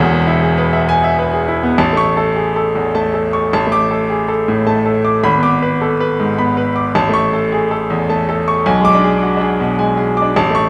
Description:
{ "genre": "classical, virtuoso piano study", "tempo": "105 BPM", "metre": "3/4", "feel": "rubato", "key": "A major", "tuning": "A4 = 440 Hz", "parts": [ { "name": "clear baby grand piano", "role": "solo", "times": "0.0-10.7 s", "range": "E1 to D6", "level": "-15 LUFS", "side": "equal", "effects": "none" } ], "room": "wet recital hall reverb, RT60 1.4 s", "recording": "none", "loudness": "-15 LUFS", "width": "mono", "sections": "0.0-1.8 A section; 1.8-10.7 B section", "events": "none", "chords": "0.0 E; 1.8 A; 3.5 D5/A; 5.2 G#dim; 7.0 A; 8.7 G#dim/B", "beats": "0.57 1.18 | 1.78 2.36 2.94 | 3.52 4.10 4.67 | 5.24 5.81 6.38 | 6.95 7.52 8.09 | 8.65 9.22 9.78 | 10.36" }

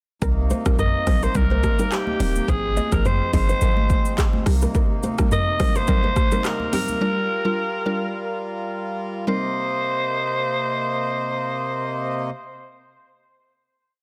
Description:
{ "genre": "afrobeats", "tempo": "106 BPM", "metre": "4/4", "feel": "swing 55% on 16ths", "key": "C minor", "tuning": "A4 = 438 Hz", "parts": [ { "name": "mallet-like synth pluck", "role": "accompaniment", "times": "0.2-12.4 s", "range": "F3 to Bb4", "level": "-30 LUFS", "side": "equal", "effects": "chorus, phaser" }, { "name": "pedal harmonium", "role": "sustained chords", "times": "0.2-12.3 s", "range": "C3 to Eb5", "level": "-32 LUFS", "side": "equal", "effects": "none" }, { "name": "nylon-string guitar", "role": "riff", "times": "0.2-6.8 s", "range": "G4 to Eb5", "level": "-34 LUFS", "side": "equal", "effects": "tape echo" }, { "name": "clean 808-style bass", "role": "bass", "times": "0.2-4.7 s", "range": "Eb1 to C2", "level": "-24 LUFS", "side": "equal", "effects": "none" }, { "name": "afro-pop drum kit", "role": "drums", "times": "0.2-7.0 s", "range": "handclaps, hi-hat, kick drum, rim click, shaker, toms", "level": "-24 LUFS", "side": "equal", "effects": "none" }, { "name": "congas", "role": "percussion", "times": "0.5-7.0 s", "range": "none", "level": "-33 LUFS", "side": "equal", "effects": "none" }, { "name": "growling alto saxophone", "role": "melody", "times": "0.8-12.3 s", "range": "G4 to Eb5", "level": "-27 LUFS", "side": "equal", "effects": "tape echo" } ], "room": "light reverb, studio reverb", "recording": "dense, heavily limited modern master", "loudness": "-22 LUFS", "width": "mono", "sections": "0.2-9.3 chorus; 9.3-11.5 final chord", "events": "none", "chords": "0.2 Cm7; 2.5 Ab6; 4.5 Cm7; 7.0 Gm7; 9.3 Cm7", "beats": "| 0.22 0.79 1.35 1.92 | 2.48 3.05 3.62 4.18 | 4.75 5.31 5.88 6.45 | 7.01 7.58 8.14 8.71 | 9.28 9.84 10.41 10.97" }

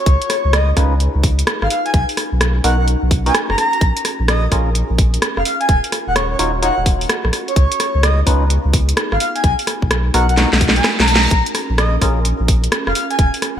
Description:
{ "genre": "UK garage, two-step garage", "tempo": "128 BPM", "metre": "4/4", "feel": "swing 65% on 16ths", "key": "unclear", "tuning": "A4 = 437 Hz", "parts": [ { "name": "breathy flute-like synth lead", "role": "melody", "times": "0.0-13.6 s", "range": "Db5 to A#5", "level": "-21 LUFS", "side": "equal", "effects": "tremolo, wide subtle chorus, ping-pong delay" }, { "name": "ethereal airy pad", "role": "sustained chords", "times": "0.0-13.6 s", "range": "Cb4 to Cb5", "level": "-29 LUFS", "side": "equal", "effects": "ensemble chorus, built-in reverb, sidechain pumping" }, { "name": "saturated sub bass", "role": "bass", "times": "0.1-13.6 s", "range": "Eb1 to Db2", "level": "-17 LUFS", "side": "equal", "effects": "none" }, { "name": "electronic kick drum", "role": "drums", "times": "0.1-13.3 s", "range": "none", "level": "-16 LUFS", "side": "equal", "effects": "none" }, { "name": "garage drum kit", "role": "drums", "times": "0.1-13.5 s", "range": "hi-hat, rim click, snare drum", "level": "-19 LUFS", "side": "equal", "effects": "gated reverb" }, { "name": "percussive organ stab", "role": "stabs", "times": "0.8-12.2 s", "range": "B3 to Db5", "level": "-22 LUFS", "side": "left 1 dB", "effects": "chorus, ping-pong delay" }, { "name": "reverse cymbal", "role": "sound effects", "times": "10.8-11.3 s", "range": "none", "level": "-26 LUFS", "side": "right 4 dB", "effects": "none" } ], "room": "light reverb, digital ambience", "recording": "bright 1980s-style digital production", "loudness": "-13 LUFS", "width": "side -10 dB against mid", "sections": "0.0-13.6 A section", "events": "drum fill 10.4-11.3; reverse cymbal 10.8-11.3", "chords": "0.0 Db9; 1.7 Bmaj7; 3.8 Bbm7; 5.5 Ebm9; 7.3 Db9; 9.2 Bmaj7; 11.3 Bbm7; 13.0 Ebm9", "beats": "| 0.06 0.53 1.00 1.47 | 1.94 2.41 2.88 3.35 | 3.81 4.28 4.75 5.22 | 5.69 6.16 6.63 7.09 | 7.56 8.03 8.50 8.97 | 9.44 9.91 10.38 10.85 | 11.31 11.78 12.25 12.72 | 13.19" }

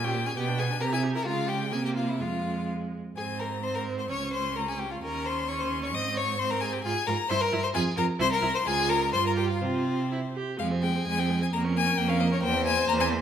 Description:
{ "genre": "quick classical-period movement for string quartet", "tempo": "122-136 BPM", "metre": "2/4", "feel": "rubato", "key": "F minor, Ab major from 3.2 s, F minor from 6.9 s", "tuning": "A4 = 439 Hz", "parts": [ { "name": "clear violin", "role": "melody", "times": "0.0-13.1 s", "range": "C5 to Eb6", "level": "-30 LUFS", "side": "left 6 dB", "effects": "none" }, { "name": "clear violin", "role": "second line", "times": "0.0-13.2 s", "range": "C4 to Eb5", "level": "-32 LUFS", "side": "left 2 dB", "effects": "none" }, { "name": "clear viola", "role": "accompaniment", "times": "0.0-13.2 s", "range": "Ab3 to G4", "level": "-33 LUFS", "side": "right 4 dB", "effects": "none" }, { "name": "rich cello", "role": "bass", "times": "0.0-13.2 s", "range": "C2 to Db3", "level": "-30 LUFS", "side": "right 3 dB", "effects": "none" } ], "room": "wet recital hall reverb, RT60 1.3 s", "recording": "none", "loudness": "-25 LUFS", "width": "side -9 dB against mid", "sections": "0.0-3.2 A section; 3.2-10.6 B section; 10.6-13.2 C section", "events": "none", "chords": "0.4 Bm6; 0.8 C; 1.3 Db; 1.7 C7b13; 2.2 Fm; 3.2 Ab; 4.1 Dbmaj7(no3); 5.0 Bbmadd9; 5.9 Ab; 6.9 Fm; 7.3 Edim; 7.8 Fm; 8.2 C7; 8.7 Db; 9.1 Gm7; 9.6 F5/C; 10.1 C; 10.6 Fm; 11.5 Bbm/F; 12.4 C7/E", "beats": "| 0.37 0.81 | 1.26 1.72 | 2.20 2.69 | 3.17 3.63 | 4.10 4.56 | 5.03 5.49 | 5.94 6.40 | 6.85 7.30 | 7.75 8.20 | 8.66 9.13 | 9.62 10.11 | 10.59 11.07 | 11.53 11.98 | 12.43 12.88" }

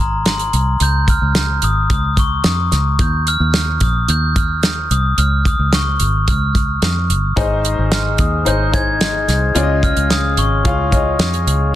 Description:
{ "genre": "piano-driven pop", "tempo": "110 BPM", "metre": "4/4", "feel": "straight", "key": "unclear", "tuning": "A4 = 440 Hz", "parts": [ { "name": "glockenspiel with rubber mallets", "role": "melody", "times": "0.0-11.4 s", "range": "Bb5 to Ab6", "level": "-19 LUFS", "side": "left 1 dB", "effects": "plate reverb" }, { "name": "fingered electric bass", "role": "bass", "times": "0.0-11.7 s", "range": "G1 to F2", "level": "-17 LUFS", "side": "equal", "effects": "none" }, { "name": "damped 70s drum kit", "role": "drums", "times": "0.3-11.6 s", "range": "hi-hat, kick drum, snare drum", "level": "-17 LUFS", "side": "equal", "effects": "none" }, { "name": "clear upright piano", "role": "accompaniment", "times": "7.4-11.8 s", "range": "Ab2 to F5", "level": "-19 LUFS", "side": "left 3 dB", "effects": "plate reverb" } ], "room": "light reverb, studio ambience", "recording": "dense, heavily limited modern master", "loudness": "-13 LUFS", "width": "side -13 dB against mid", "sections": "0.0-11.8 A section", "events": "none", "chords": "0.0 Ab; 0.8 Db; 3.0 Ebsus2; 5.2 Db; 7.4 Ab; 9.6 Dbadd9", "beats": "0.26 | 0.81 1.35 1.90 2.44 | 2.99 3.54 4.08 4.63 | 5.18 5.73 6.27 6.82 | 7.37 7.91 8.46 9.01 | 9.56 10.10 10.65 11.20 | 11.74" }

